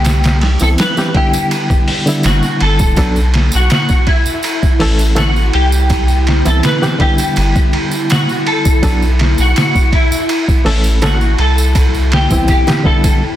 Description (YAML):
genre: trip hop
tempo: 82 BPM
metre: 4/4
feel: straight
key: unclear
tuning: A4 = 439 Hz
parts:
  - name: clean electric guitar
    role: melody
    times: 0.0-13.2 s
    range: E4 to B4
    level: -18 LUFS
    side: equal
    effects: ensemble chorus, tape echo
  - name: round analog bass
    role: bass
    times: 0.0-12.5 s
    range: D1 to C2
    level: -13 LUFS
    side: equal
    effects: none
  - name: trip hop sampler-style drum kit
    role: drums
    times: 0.0-13.2 s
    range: hi-hat, kick drum, ride cymbal, snare drum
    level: -14 LUFS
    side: equal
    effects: overdrive
  - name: tambourine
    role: percussion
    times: 0.0-13.2 s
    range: none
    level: -27 LUFS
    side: right 3 dB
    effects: none
  - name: barky reed electric piano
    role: accompaniment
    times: 0.6-13.2 s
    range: D3 to A4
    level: -18 LUFS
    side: equal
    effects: tremolo, vintage 12-bit sampler grit
  - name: warbly tape-like pad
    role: sustained chords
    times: 3.7-13.4 s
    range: E4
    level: -22 LUFS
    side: left 1 dB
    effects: chorus, built-in reverb
room: digital ambience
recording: dense, heavily limited modern master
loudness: -10 LUFS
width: side -12 dB against mid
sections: 0.0-13.4 A section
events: none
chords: 0.0 Cmaj7; 1.5 G; 3.0 Bm7; 4.4 A; 5.9 Cmaj7; 7.4 G; 8.8 Bm7; 10.3 A; 11.8 Cmaj7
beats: | 0.04 0.78 1.51 2.24 | 2.97 3.70 4.43 5.17 | 5.90 6.63 7.36 8.09 | 8.82 9.56 10.29 11.02 | 11.75 12.48 13.22